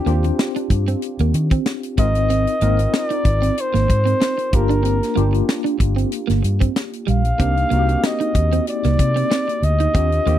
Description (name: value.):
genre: polished 1980s jazz-funk pop.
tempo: 94 BPM.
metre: 4/4.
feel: swing 54% on 16ths.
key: C minor.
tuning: A4 = 440 Hz.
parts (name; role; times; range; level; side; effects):
dark flugelhorn; melody; 0.0-10.4 s; G4 to F5; -22 LUFS; equal; none.
tine electric piano; accompaniment; 0.0-10.4 s; D3 to Bb4; -25 LUFS; left 3 dB; medium stereo tremolo, lush chorus.
electric guitar at the edge of break-up; riff; 0.1-10.4 s; G3 to Eb4; -24 LUFS; right 10 dB; analog chorus.
vintage muted fingered electric bass; bass; 0.1-10.4 s; G1 to Eb3; -18 LUFS; equal; none.
tight funk drum kit; drums; 0.1-10.4 s; hi-hat, kick drum, snare drum; -21 LUFS; equal; none.
room: little or no reverb.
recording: dry, close 1970s-style studio recording.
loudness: -16 LUFS.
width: side -12 dB against mid.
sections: 0.0-10.4 A section.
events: none.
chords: 0.0 Ebmaj13; 2.0 Ab6; 4.5 Gm7; 7.4 Cm9.